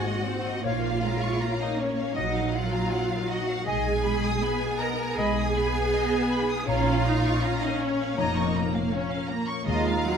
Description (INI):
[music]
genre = cinematic, emotional film score for orchestra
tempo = 80 BPM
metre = 4/4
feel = rubato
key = unclear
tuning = A4 = 440 Hz
[part]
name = rich studio violin section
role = melody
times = 0.0-10.2 s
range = C5 to Eb6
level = -34 LUFS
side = left 1 dB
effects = none
[part]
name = clear studio violin section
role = second line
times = 0.0-10.2 s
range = Db5 to Bb5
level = -35 LUFS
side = left 4 dB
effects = none
[part]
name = warm studio viola section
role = accompaniment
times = 0.0-10.2 s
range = Gb3 to Eb4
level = -30 LUFS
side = right 2 dB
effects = none
[part]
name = concert harp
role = arpeggios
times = 0.0-10.2 s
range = Ab2 to Ab5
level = -32 LUFS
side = left 11 dB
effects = none
[part]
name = warm studio cello section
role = bass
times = 0.0-10.2 s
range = Db4 to Bb4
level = -30 LUFS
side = right 3 dB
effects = none
[part]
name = hollow flute section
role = second line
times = 0.6-10.2 s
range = F5 to Bb5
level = -35 LUFS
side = equal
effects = none
[part]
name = warm clarinet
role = second line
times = 0.6-10.2 s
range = Db5 to Eb5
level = -35 LUFS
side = left 2 dB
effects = none
[part]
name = rich studio double bass section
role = bass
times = 0.6-10.2 s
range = F1 to Eb2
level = -31 LUFS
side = right 3 dB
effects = none
[sound]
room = light reverb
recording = none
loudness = -24 LUFS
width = side -7 dB against mid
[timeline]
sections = 0.0-10.2 A section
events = none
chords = 0.0 Ab; 0.6 Bbm; 2.2 Ebmadd9/Bb; 3.7 Abm/Cb; 6.7 Bbm; 9.7 Ebmadd9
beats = | 0.64 1.40 2.16 2.92 | 3.67 4.42 5.18 5.93 | 6.67 7.42 8.18 8.92 | 9.67